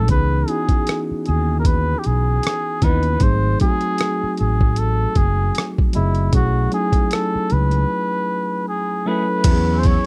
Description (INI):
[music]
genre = R&B, neo-soul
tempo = 77 BPM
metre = 4/4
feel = swing 56% on 16ths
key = unclear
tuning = A4 = 439 Hz
[part]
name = trumpet with cup mute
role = melody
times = 0.0-10.1 s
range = E4 to C#5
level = -26 LUFS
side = equal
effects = none
[part]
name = mellow tine electric piano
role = accompaniment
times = 0.0-10.1 s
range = E3 to G#5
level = -26 LUFS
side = equal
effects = none
[part]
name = fretless electric bass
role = bass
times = 0.0-10.0 s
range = F#1 to E2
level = -21 LUFS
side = equal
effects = lush chorus
[part]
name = boom bap sampler-style drum kit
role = drums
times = 0.1-10.0 s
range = crash cymbal, hi-hat, kick drum, rim click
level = -20 LUFS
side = equal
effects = none
[part]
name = electric guitar through a small old amp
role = second line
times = 2.8-3.0, 9.1-9.2 s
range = E3 to G#4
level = -35 LUFS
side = equal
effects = tape echo
[part]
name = hollow soft pad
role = sustained chords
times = 9.4-10.1 s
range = B4 to E6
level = -37 LUFS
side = equal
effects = ensemble chorus
[sound]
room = little or no reverb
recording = dry, close 1970s-style studio recording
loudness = -19 LUFS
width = mono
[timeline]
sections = 0.0-9.4 A section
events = break 7.9-9.4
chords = 0.1 C#m9; 3.2 G#7b9; 6.3 B13sus4; 9.4 E6